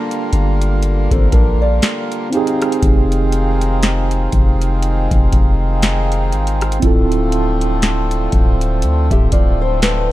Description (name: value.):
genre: contemporary R&B.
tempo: 60 BPM.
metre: 4/4.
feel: swing 58% on 16ths.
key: unclear.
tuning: A4 = 441 Hz.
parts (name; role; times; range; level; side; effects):
mellow tine electric piano; accompaniment; 0.0-10.1 s; Bb3 to A4; -21 LUFS; right 4 dB; medium stereo tremolo.
hand-pumped harmonium; sustained chords; 0.0-10.1 s; D3 to F4; -22 LUFS; left 1 dB; none.
booming analog drum machine; drums; 0.1-10.1 s; hi-hat, kick drum, rim click, snare drum; -15 LUFS; equal; none.
long sustained 808-style bass; bass; 0.3-10.1 s; D1 to D2; -17 LUFS; equal; none.
fingerpicked old ladder-braced acoustic guitar; arpeggios; 1.1-2.3, 9.1-10.1 s; C4 to E5; -22 LUFS; left 1 dB; ping-pong delay.
room: little or no reverb.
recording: dark, warm production.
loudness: -13 LUFS.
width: side -16 dB against mid.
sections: 0.0-10.1 A section.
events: none.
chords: 0.0 Gm7; 2.3 Fm7; 6.8 Dm7.